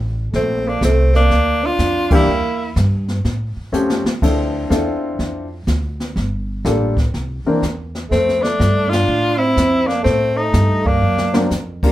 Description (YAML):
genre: jazz, small-group swing and bop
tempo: 124 BPM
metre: 4/4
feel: swing 66% on 8ths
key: F major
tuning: A4 = 440 Hz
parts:
  - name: upright bass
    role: bass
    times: 0.0-11.9 s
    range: G1 to A2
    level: -20 LUFS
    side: equal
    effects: none
  - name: breathy alto saxophone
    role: second line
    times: 0.3-2.7, 8.1-11.5 s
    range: A3 to D4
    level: -20 LUFS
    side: right 3 dB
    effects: none
  - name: jazz brush drum kit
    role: drums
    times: 0.3-11.9 s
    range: brushed snare drum, crash cymbal, hi-hat, kick drum, ride cymbal, snare drum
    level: -21 LUFS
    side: equal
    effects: none
  - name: edgy tenor saxophone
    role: melody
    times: 0.4-2.7, 8.1-11.5 s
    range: C4 to F4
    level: -18 LUFS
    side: left 2 dB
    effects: none
  - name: warm baby grand piano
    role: accompaniment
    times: 2.1-7.6, 11.3-11.9 s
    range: E3 to Bb4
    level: -18 LUFS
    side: left 2 dB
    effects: none
room: wet club reverb, RT60 0.6 s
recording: heard from further back in the room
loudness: -15 LUFS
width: side -14 dB against mid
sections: 0.0-11.9 A section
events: band accent 2.0, 8.8; drum fill 3.7-4.2, 11.0-11.5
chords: 0.3 Bb; 2.3 Edim; 3.2 A7alt; 4.2 Dm9; 6.2 Gm9; 7.1 C9; 8.1 F69; 10.0 Cm6; 11.0 D7alt